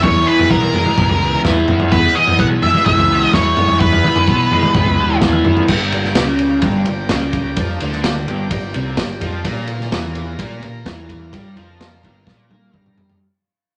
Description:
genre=psychedelic rock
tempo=128 BPM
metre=4/4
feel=straight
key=unclear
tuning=A4 = 440 Hz
part: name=octave-fuzz lead guitar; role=melody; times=0.0-5.2 s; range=Bb4 to F#5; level=-18 LUFS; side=equal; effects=distortion
part: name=bright tonewheel organ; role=sustained chords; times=0.0-13.2 s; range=G3 to F5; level=-32 LUFS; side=equal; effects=none
part: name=overdriven semi-hollow guitar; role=riff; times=0.0-13.2 s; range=E2 to E4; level=-21 LUFS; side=equal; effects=rotary speaker
part: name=fuzz fingered electric bass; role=bass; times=0.0-13.2 s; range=G1 to Bb2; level=-25 LUFS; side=equal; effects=overdrive
part: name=crunchy breakbeat drum kit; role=drums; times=0.0-13.2 s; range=crash cymbal, kick drum, ride cymbal, snare drum, toms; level=-20 LUFS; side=equal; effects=none
part: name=congas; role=percussion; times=0.2-13.1 s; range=none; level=barely audible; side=none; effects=none
room=wet studio reverb, RT60 0.6 s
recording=none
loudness=-15 LUFS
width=mono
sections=0.0-5.7 A section; 5.7-13.2 B section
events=drum fill 5.3-5.7, 12.3-13.2; fade-out 5.7-13.2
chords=0.0 E; 5.7 Gm; 9.4 Bb5

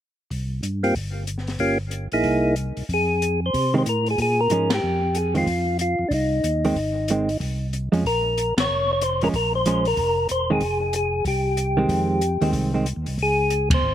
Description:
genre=soul jazz organ trio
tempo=186 BPM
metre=4/4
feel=swing 62% on 8ths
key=F minor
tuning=A4 = 440 Hz
part: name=tonewheel organ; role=bass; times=0.3-13.9 s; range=E1 to C3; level=-26 LUFS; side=equal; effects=overdrive, chorus vibrato, slow rotary speaker
part: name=open jazz drum kit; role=drums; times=0.3-13.8 s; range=hi-hat, kick drum, ride cymbal, snare drum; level=-29 LUFS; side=left 1 dB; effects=none
part: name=percussive tonewheel organ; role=melody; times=0.8-13.9 s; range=Bb3 to Db5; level=-22 LUFS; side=equal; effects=slow rotary speaker, slapback echo
part: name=hollow-body jazz guitar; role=accompaniment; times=3.7-12.9 s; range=Eb3 to Db4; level=-23 LUFS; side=right 3 dB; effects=slapback echo
room=little or no reverb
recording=recorded outdoors, with no room sound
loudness=-20 LUFS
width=side -11 dB against mid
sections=0.3-2.9 A section; 2.9-13.9 B section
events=band accent 4.7, 8.5, 13.7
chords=0.3 C5; 1.6 Gm7b5; 2.2 C7alt; 2.9 Fm; 4.2 Bbm7; 5.5 Fm7; 8.0 Bbm7; 10.6 Fm7; 13.2 Dbmaj7(no3)

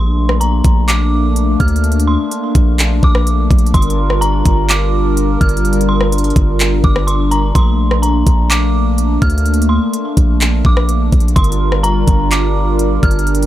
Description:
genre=hip hop, atmospheric cloud-rap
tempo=126 BPM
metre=4/4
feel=half-time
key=Bb major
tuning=A4 = 440 Hz
part: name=dark detuned synth bell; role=melody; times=0.0-13.3 s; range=Bb5 to F6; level=-21 LUFS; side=right 1 dB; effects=chorus, tape echo
part: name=hollow soft pad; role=sustained chords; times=0.0-13.5 s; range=G3 to Bb4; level=-18 LUFS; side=left 1 dB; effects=chorus, sidechain pumping
part: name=long sustained 808-style bass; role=bass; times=0.0-13.5 s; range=G1 to D2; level=-14 LUFS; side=equal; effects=none
part: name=trap drum kit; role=drums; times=0.3-13.5 s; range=handclaps, hi-hat, kick drum, rim click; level=-14 LUFS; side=equal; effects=overdrive
room=little or no reverb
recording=none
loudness=-11 LUFS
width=side -13 dB against mid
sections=0.0-13.5 A section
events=none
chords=0.0 Bbmaj7; 3.7 Gm7; 7.6 Bbmaj7; 11.4 Gm7

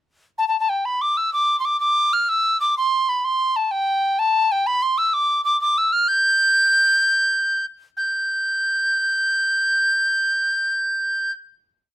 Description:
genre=celtic folk, Celtic slide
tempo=127 BPM (dotted quarters)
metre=12/8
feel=straight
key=G mixolydian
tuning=A4 = 440 Hz
part: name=tin whistle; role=solo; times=0.4-11.3 s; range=G5 to G6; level=-17 LUFS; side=equal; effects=none
room=light reverb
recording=close, detailed microphones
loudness=-17 LUFS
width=side -13 dB against mid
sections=0.4-8.0 A section; 8.0-11.7 final note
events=none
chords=none

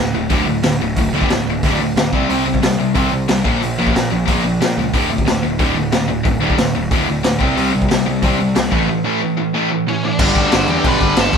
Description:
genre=punk rock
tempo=182 BPM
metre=4/4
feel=straight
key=unclear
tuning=A4 = 442 Hz
part: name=crunchy overdriven guitar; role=riff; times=0.0-11.4 s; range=D2 to C4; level=-20 LUFS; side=right 8 dB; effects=none
part: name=tight distorted guitar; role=riff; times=0.0-11.4 s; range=D2 to C4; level=-19 LUFS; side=left 7 dB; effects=distortion
part: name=fuzz picked electric bass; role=bass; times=0.0-11.4 s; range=D1 to Bb2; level=-22 LUFS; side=equal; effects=overdrive
part: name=raw garage drum kit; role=drums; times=0.3-11.4 s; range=crash cymbal, hi-hat, kick drum, snare drum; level=-18 LUFS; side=equal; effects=none
part: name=bluesy overdriven lead guitar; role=melody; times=9.9-11.4 s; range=C#4 to B5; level=-20 LUFS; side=equal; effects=distortion
part: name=distorted electric guitar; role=riff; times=10.2-11.4 s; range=F2 to G3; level=-21 LUFS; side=right 1 dB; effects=overdrive
room=light reverb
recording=band playing live in one room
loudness=-14 LUFS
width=side -6 dB against mid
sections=0.0-10.2 A section; 10.2-11.4 B section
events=break 8.9-10.2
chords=0.0 D5; 2.1 C5; 3.5 Bb5; 4.9 D5; 7.4 C5; 8.7 A5; 10.2 G

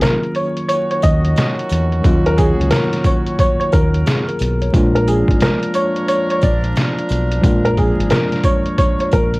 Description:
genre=hip hop, boom-bap hip-hop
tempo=89 BPM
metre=4/4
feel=swing 63% on 16ths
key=Eb minor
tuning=A4 = 439 Hz
part: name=warm upright piano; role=melody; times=0.0-9.4 s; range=Ab4 to Eb5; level=-19 LUFS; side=equal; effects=none
part: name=mellow tine electric piano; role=accompaniment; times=0.0-9.4 s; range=Eb3 to Db5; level=-20 LUFS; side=equal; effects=medium stereo tremolo, cassette tape
part: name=trip hop sampler-style drum kit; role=drums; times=0.0-9.4 s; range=hi-hat, kick drum, snare drum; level=-17 LUFS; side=equal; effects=none
part: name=sleigh bells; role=percussion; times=0.0-9.3 s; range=none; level=-38 LUFS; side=right 2 dB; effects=none
part: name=warm horn section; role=stabs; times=0.7-9.4 s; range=Eb3 to Bb4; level=-26 LUFS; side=right 1 dB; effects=cassette tape
part: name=deep dub fingered electric bass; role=bass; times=1.0-9.4 s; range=Ab1 to Fb2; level=-18 LUFS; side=equal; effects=none
room=small room ambience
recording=home recording on cassette, vinyl crackle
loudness=-13 LUFS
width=side -22 dB against mid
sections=0.0-9.4 A section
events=none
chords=0.0 Ebm7; 4.7 Bb7

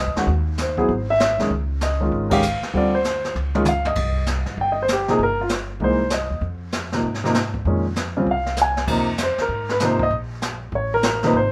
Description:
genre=jazz piano trio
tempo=195 BPM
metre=4/4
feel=swing 63% on 8ths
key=F minor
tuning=A4 = 439 Hz
part: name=warm grand piano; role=melody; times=0.0-11.5 s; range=Bb2 to Ab5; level=-22 LUFS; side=equal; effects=none
part: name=upright bass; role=bass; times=0.0-11.5 s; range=G1 to Ab2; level=-28 LUFS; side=equal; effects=none
part: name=jazz brush drum kit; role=drums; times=0.2-11.5 s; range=brushed snare drum, crash cymbal, hi-hat, kick drum, ride cymbal, snare drum, toms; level=-29 LUFS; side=equal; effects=none
room=moderate studio reverb, RT60 0.6 s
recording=none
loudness=-21 LUFS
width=mono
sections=0.0-8.9 A section; 8.9-11.5 B section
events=band accent 2.3; drum fill 3.4-4.0, 8.6-8.9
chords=0.3 N.C.; 0.9 Ab; 1.5 Db; 2.7 Dm7; 3.4 Dbadd9; 4.0 Cm; 5.2 Gm; 5.8 C7alt; 6.4 Fm; 8.9 Fm7; 10.1 N.C.; 10.7 Bbmmaj7/A

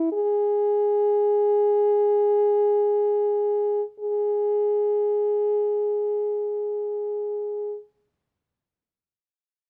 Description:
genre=classical, free, expressive piece for unaccompanied French horn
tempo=22-39 BPM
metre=3/4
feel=rubato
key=unclear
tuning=A4 = 440 Hz
part: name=mellow French horn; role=solo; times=0.0-7.8 s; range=E4 to G#4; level=-23 LUFS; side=equal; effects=none
room=light reverb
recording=none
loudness=-23 LUFS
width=mono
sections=0.0-4.0 A section; 4.0-9.7 B section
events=slowing down 0.0-4.0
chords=none

